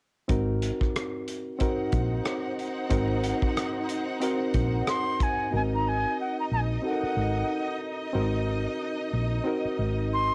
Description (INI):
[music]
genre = lush 1970s-style soul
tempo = 92 BPM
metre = 4/4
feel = swing 58% on 16ths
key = unclear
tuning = A4 = 444 Hz
[part]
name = barky reed electric piano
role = accompaniment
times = 0.3-10.3 s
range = Cb4 to Bb4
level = -33 LUFS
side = equal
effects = overdrive, cassette tape
[part]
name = hollow-body short-scale fingered electric bass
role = bass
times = 0.3-10.3 s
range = Ab1 to Bb1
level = -31 LUFS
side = equal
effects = none
[part]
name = modern studio drum kit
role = drums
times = 0.3-5.4 s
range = hi-hat, kick drum, rim click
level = -32 LUFS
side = equal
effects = none
[part]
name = clear studio string section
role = second line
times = 1.6-10.3 s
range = Eb4 to Gb5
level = -36 LUFS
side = equal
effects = cassette tape
[part]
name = breathy bright concert flute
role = melody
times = 4.9-10.3 s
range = Gb5 to C6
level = -31 LUFS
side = equal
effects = cassette tape
[sound]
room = moderate booth ambience, RT60 0.2 s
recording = home recording on cassette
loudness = -28 LUFS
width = mono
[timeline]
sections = 0.3-5.5 A section; 5.5-10.3 B section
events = none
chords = 0.3 Ab7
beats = | 0.29 0.95 1.60 2.26 | 2.91 3.56 4.22 4.87 | 5.53 6.18 6.84 7.49 | 8.15 8.80 9.46 10.11